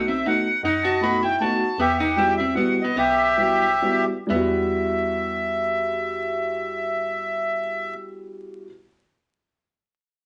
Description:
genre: musette waltz.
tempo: 123-158 BPM.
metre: 3/4.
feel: straight.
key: E harmonic minor.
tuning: A4 = 444 Hz.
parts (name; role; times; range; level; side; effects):
accordion; melody; 0.0-7.9 s; G4 to B5; -24 LUFS; equal; none.
archtop guitar, miked and amplified; second line; 0.0-8.6 s; B3 to F#4; -29 LUFS; equal; none.
dark upright piano; accompaniment; 0.0-8.7 s; G3 to F#4; -29 LUFS; equal; none.
woody FM bass; bass; 0.0-7.9 s; B1 to F#2; -39 LUFS; equal; none.
room: moderate studio reverb, RT60 0.7 s.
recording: vinyl crackle, nothing above 10.4 kHz.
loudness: -22 LUFS.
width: mono.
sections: 0.0-4.3 A section; 4.3-7.2 B section.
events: slowing down 1.8-4.3.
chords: 0.0 B7; 1.8 Emadd9.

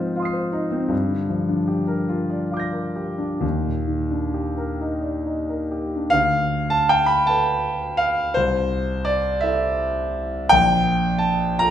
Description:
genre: classical, impressionist solo piano.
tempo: 43-57 BPM (dotted quarters).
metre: 6/8.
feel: rubato.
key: D minor.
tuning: A4 = 440 Hz.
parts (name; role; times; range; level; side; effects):
warm concert grand piano; solo; 0.0-11.7 s; Bb1 to C7; -19 LUFS; equal; none.
room: wet recital hall reverb, RT60 1.6 s.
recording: minimal, uncompressed stereo recording.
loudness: -19 LUFS.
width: side -10 dB against mid.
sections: 0.0-6.1 A section; 6.1-11.7 B section.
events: none.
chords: 0.0 Fm7/Ab; 0.9 Gm7; 3.4 Ebmaj7; 6.1 D5; 8.4 C6; 10.5 Bb5.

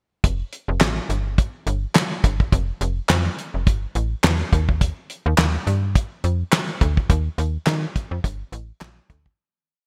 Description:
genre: early-eighties boogie funk.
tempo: 105 BPM.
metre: 4/4.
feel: swing 56% on 16ths.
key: F major.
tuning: A4 = 441 Hz.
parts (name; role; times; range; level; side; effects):
slap-like FM bass; bass; 0.2-9.3 s; F1 to Eb3; -24 LUFS; equal; none.
damped 70s drum kit; drums; 0.2-9.4 s; handclaps, hi-hat, kick drum, snare drum; -22 LUFS; equal; gated reverb.
group handclap; percussion; 0.8-9.0 s; none; -32 LUFS; equal; none.
room: light reverb, small room ambience.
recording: bright 1980s-style digital production.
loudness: -22 LUFS.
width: mono.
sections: 0.2-9.4 breakdown.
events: fade-out 7.1-9.4.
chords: none.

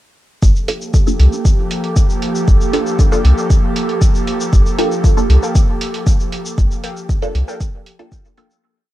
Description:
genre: dub techno.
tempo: 117 BPM.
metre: 4/4.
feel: straight.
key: G minor.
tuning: A4 = 439 Hz.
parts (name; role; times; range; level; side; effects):
airy breathy pad; sustained chords; 0.7-8.6 s; F3 to A4; -22 LUFS; right 1 dB; chorus, sidechain pumping.
warm sub bass; bass; 0.4-7.4 s; G1 to C2; -10 LUFS; equal; sidechain pumping.
electronic kick drum; drums; 0.4-8.2 s; none; -13 LUFS; equal; small room ambience.
electronic shaker and hi-hat; drums; 0.4-8.6 s; none; -28 LUFS; right 1 dB; overdrive, small room ambience.
wind-like tuned noise texture; texture; 1.6-8.6 s; G4; -30 LUFS; right 1 dB; built-in reverb, sidechain pumping.
filtered dub chord stab; stabs; 0.7-8.6 s; Bb3 to A4; -22 LUFS; right 1 dB; phaser, sidechain pumping, dub echo.
warbly dusty pluck; riff; 4.8-8.6 s; A4 to G5; -29 LUFS; left 2 dB; chorus, phaser, sidechain pumping, dub echo.
room: little or no reverb.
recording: dark, warm production.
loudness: -12 LUFS.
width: side -15 dB against mid.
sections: 0.4-8.6 groove.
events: filter sweep on synth stab 0.4-8.6; fade-out 5.9-8.6.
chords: 0.4 Gm9.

